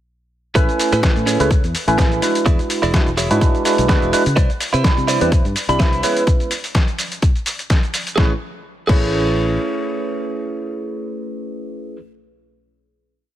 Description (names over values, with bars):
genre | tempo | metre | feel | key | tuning
filtered disco house | 126 BPM | 4/4 | swing 55% on 16ths | A major | A4 = 444 Hz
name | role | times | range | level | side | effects
tine electric piano | accompaniment | 0.6-12.0 s | G3 to B5 | -20 LUFS | right 1 dB | phaser, sidechain pumping
direct-recorded clean electric guitar | riff | 0.6-12.0 s | C#4 to E5 | -24 LUFS | right 3 dB | wide subtle chorus, sidechain pumping
fingered electric bass | bass | 0.6-9.6 s | E1 to C#3 | -22 LUFS | equal | tube saturation, sidechain pumping
dusty soul sampler-style drum kit | drums | 0.6-9.0 s | crash cymbal, hi-hat, shaker, snare drum | -23 LUFS | equal | overdrive, sidechain pumping on hats, sidechain pumping on perc, sidechain pumping on cymbals
electronic kick drum | drums | 0.6-9.0 s | none | -16 LUFS | equal | none
room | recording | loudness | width
light reverb, digital ambience | none | -15 LUFS | side -12 dB against mid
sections
0.6-8.2 drop; 8.2-12.0 final chord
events
drop 0.6-8.2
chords
0.6 Amaj9; 2.5 E9; 4.4 Cmaj9; 6.0 C#m7; 8.2 Amaj9